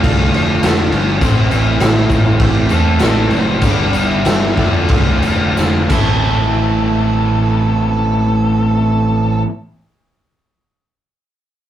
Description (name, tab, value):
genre	classic rock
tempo	86-102 BPM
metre	4/4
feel	straight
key	A minor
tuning	A4 = 439 Hz
part	octave-fuzz lead guitar	melody	0.0-9.4 s	C4 to C5	-23 LUFS	right 2 dB	distortion
part	tonewheel organ	sustained chords	0.0-9.4 s	E3 to B4	-32 LUFS	equal	none
part	crunchy overdriven guitar	riff	0.0-9.5 s	A2 to C5	-22 LUFS	left 5 dB	none
part	crunchy overdriven guitar	riff	0.0-9.5 s	A2 to A4	-19 LUFS	right 3 dB	none
part	overdriven electric guitar	riff	0.0-9.5 s	G2 to D4	-24 LUFS	left 1 dB	none
part	fingered electric bass	bass	0.0-9.4 s	F1 to E2	-17 LUFS	equal	none
part	raw garage drum kit	drums	0.0-6.1 s	crash cymbal, kick drum, snare drum	-15 LUFS	equal	none
part	tambourine	percussion	0.6-6.6 s	none	-38 LUFS	left 6 dB	none
room	moderate studio reverb, RT60 0.5 s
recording	rough rehearsal-room recording, tube saturation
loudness	-12 LUFS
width	side -11 dB against mid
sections	0.0-6.2 A section; 6.2-9.0 B section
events	slowing down 1.2-6.2; drum fill 5.6-6.2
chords	0.0 Dm/F; 1.2 Am; 3.6 G; 4.6 Dm/F; 5.9 Am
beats	0.04 0.63 | 1.22 1.81 2.41 3.01 | 3.63 4.26 4.90 5.57 | 6.25 6.95 7.64 8.34